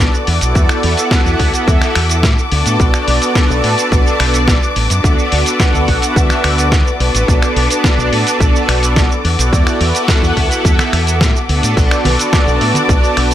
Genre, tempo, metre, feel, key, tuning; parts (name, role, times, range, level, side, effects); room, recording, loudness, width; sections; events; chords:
nu-disco, nu disco; 107 BPM; 4/4; straight; B minor; A4 = 440 Hz
warm analog pad; accompaniment; 0.0-13.3 s; B3 to F#5; -17 LUFS; right 1 dB; chorus, digital delay
dark chamber string section; sustained chords; 0.0-13.3 s; A4 to D6; -20 LUFS; left 2 dB; sidechain pumping
fingered electric bass with an envelope filter; bass; 0.0-13.3 s; A1 to A2; -16 LUFS; equal; sidechain pumping
dusty soul sampler-style drum kit; drums; 0.0-13.3 s; crash cymbal, finger snaps, hi-hat, shaker, snare drum; -18 LUFS; equal
electronic kick drum; drums; 0.6-13.0 s; -13 LUFS; equal; overdrive
congas; percussion; 12.0-12.9 s; -20 LUFS; right 1 dB
digital ambience; -10 LUFS; side -12 dB against mid
0.0-13.3 A section
0.3 E9sus4; 2.8 Bm7; 5.0 D6; 7.3 Bm7; 9.2 E9sus4; 11.8 Bm7